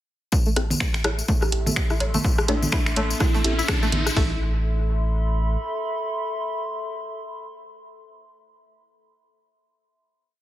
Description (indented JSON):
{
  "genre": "minimal techno",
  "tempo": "125 BPM",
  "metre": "4/4",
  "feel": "swing 58% on 16ths",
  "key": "A minor",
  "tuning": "A4 = 438 Hz",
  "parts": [
    { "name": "punchy analog drum machine", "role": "drums", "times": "0.3-4.3 s", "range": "hi-hat, kick drum, toms", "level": "-23 LUFS", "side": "equal", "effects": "small room ambience" },
    { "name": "tambourine", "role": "percussion", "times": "0.3-4.1 s", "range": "none", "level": "-32 LUFS", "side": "left 5 dB", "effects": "none" },
    { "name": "riser", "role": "sound effects", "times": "2.1-4.2 s", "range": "none", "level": "-32 LUFS", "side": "left 1 dB", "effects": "none" },
    { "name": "warbly tape-like pad", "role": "texture", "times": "1.2-8.7 s", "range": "A4 to C6", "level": "-31 LUFS", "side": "equal", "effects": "chorus, built-in reverb, sidechain pumping" },
    { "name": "string-like resonator pluck", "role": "riff", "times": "0.5-4.4 s", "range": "A3 to E4", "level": "-31 LUFS", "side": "equal", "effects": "chorus, sidechain pumping, dub echo" },
    { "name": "filtered dub chord stab", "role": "stabs", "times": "0.6-8.5 s", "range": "C4 to A4", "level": "-34 LUFS", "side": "left 1 dB", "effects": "phaser, dub echo" },
    { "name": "saturated sub bass", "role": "bass", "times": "0.6-5.6 s", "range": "A1", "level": "-24 LUFS", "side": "equal", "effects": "sidechain pumping" },
    { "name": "punchy analog drum machine", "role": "drums", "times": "0.6-4.0 s", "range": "finger snaps, hi-hat", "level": "-28 LUFS", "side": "right 1 dB", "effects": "small room ambience" },
    { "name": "electronic rim click, congas and woodblock", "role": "percussion", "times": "0.6-4.1 s", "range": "none", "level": "-28 LUFS", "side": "equal", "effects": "small room ambience, dub echo" },
    { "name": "buzzing kalimba", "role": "melody", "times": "1.4-3.7 s", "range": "D4 to G4", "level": "-33 LUFS", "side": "right 2 dB", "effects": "low-pass filter, dub echo" }
  ],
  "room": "light reverb",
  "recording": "none",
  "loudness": "-21 LUFS",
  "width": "side -14 dB against mid",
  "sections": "0.3-4.2 build; 4.2-8.0 final chord",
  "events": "build-up 0.3-4.2; filter sweep on synth pluck 0.3-4.2; riser 2.1-4.2",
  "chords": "0.3 Am; 4.2 Am7"
}